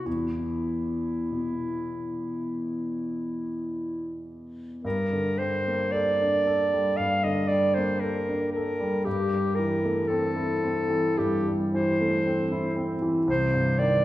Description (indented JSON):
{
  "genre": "classical, impressionist duo for clarinet and grand piano",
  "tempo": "48-60 BPM",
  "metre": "4/4",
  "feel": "rubato",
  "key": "G minor from 4.8 s",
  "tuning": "A4 = 440 Hz",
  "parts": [
    { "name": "bright clarinet", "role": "melody", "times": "0.0-14.0 s", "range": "E4 to F5", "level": "-27 LUFS", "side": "equal", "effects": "none" },
    { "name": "warm concert grand piano", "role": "accompaniment", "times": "0.0-14.0 s", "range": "C2 to A4", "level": "-27 LUFS", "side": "equal", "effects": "none" }
  ],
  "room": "wet recital hall reverb, RT60 1.8 s",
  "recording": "heard from further back in the room",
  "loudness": "-24 LUFS",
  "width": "side -15 dB against mid",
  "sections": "0.0-4.8 A section; 4.8-14.0 B section",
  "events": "none",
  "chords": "0.1 E5; 4.8 Gmadd9; 9.1 Am7/G; 13.3 Cm"
}